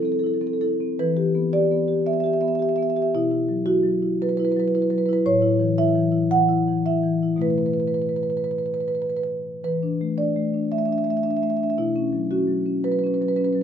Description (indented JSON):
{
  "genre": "classical, contemporary piece for solo marimba",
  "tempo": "111 BPM",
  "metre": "4/4",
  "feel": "uneven beats, rubato",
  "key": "E minor",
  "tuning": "A4 = 441 Hz",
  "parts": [
    { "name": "marimba with soft mallets", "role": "solo", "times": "0.0-13.6 s", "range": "A2 to F#5", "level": "-20 LUFS", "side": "equal", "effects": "none" }
  ],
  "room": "light reverb",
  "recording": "minimal, uncompressed stereo recording",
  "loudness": "-20 LUFS",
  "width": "side -8 dB against mid",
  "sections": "1.0-13.6 A section",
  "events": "none",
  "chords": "0.0 Fmaj7 (rootless); 1.0 Em7; 3.1 Bsus4; 5.2 A; 7.4 B7sus4; 9.6 E7sus4; 11.8 Bsus24"
}